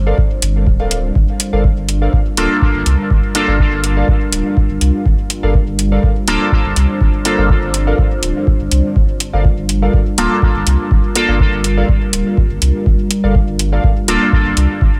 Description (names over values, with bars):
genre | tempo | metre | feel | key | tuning
dub techno | 123 BPM | 4/4 | swing 54% on 16ths | G minor | A4 = 444 Hz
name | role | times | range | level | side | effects
deep dark ambient pad | sustained chords | 0.0-15.0 s | G3 to D5 | -23 LUFS | equal | chorus, built-in reverb, sidechain pumping
pure sine sub bass | bass | 0.0-14.9 s | D1 to C2 | -18 LUFS | equal | sidechain pumping
warbly lo-fi synth keys | riff | 0.1-13.9 s | A4 to F5 | -26 LUFS | equal | chorus, sidechain pumping, dub echo
electronic kick drum | drums | 0.2-14.9 s | none | -17 LUFS | equal | none
electronic hi-hat | drums | 0.4-14.7 s | none | -19 LUFS | equal | none
resonant sweep polysynth | stabs | 2.4-14.3 s | Bb3 to A4 | -20 LUFS | equal | chorus, phaser, sidechain pumping, dub echo
room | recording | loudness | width
little or no reverb | none | -14 LUFS | mono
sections
0.0-15.0 A section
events
none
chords
0.0 Gm7